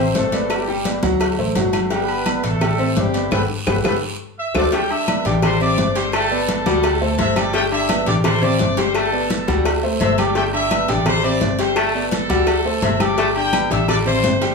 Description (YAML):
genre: latin, salsa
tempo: 170 BPM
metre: 4/4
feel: straight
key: G major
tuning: A4 = 442 Hz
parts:
  - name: warm horn section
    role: melody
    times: 0.0-4.6 s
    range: G3 to D5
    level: -24 LUFS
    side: left 2 dB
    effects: none
  - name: clear concert grand piano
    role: accompaniment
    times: 0.0-14.5 s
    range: F#3 to G5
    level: -21 LUFS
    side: equal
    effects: none
  - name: upright bass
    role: bass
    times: 0.0-14.5 s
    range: G1 to D2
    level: -24 LUFS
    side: left 1 dB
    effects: none
  - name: congas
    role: percussion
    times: 0.1-14.4 s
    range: none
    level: -26 LUFS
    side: left 3 dB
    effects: none
  - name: cowbell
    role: percussion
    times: 0.1-14.5 s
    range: none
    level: -27 LUFS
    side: left 5 dB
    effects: none
  - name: guiro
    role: percussion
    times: 0.2-14.5 s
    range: none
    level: -33 LUFS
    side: right 4 dB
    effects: none
  - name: timbales and agogo bells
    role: percussion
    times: 0.2-14.5 s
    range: none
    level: -28 LUFS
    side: right 2 dB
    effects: none
  - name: claves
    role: percussion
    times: 0.5-14.1 s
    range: none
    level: -34 LUFS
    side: left 5 dB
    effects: none
  - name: clear trumpet section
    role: melody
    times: 4.4-14.5 s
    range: G4 to E6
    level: -22 LUFS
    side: equal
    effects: none
  - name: clear baritone saxophone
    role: second line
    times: 4.7-14.3 s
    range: C3 to A3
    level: -25 LUFS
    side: left 5 dB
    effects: none
room: wet studio reverb, RT60 0.8 s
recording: small room reverb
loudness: -16 LUFS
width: side -4 dB against mid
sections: 0.0-4.7 A section; 4.7-14.5 B section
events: band accent 3.3-4.7; drum fill 4.0-4.7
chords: 0.0 Am7; 0.5 G; 1.2 D7; 1.9 Gadd9; 2.6 Am7; 3.3 Gadd9; 4.0 D; 4.7 Gadd9; 5.4 Am7; 6.1 Gadd9; 6.8 D7; 7.5 Gadd9; 8.2 Am7; 8.9 Gadd9; 9.7 D7; 10.4 Gadd9; 11.1 Am7; 11.8 Gadd9; 12.5 D7; 13.2 Gadd9; 13.9 Am7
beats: 0.15 | 0.50 0.86 1.21 1.56 | 1.91 2.26 2.61 2.96 | 3.32 3.67 4.02 4.37 | 4.72 5.08 5.43 5.78 | 6.13 6.48 6.84 7.19 | 7.54 7.89 8.24 8.60 | 8.95 9.30 9.65 10.01 | 10.36 10.71 11.06 11.42 | 11.77 12.12 12.47 12.83 | 13.18 13.53 13.88 14.24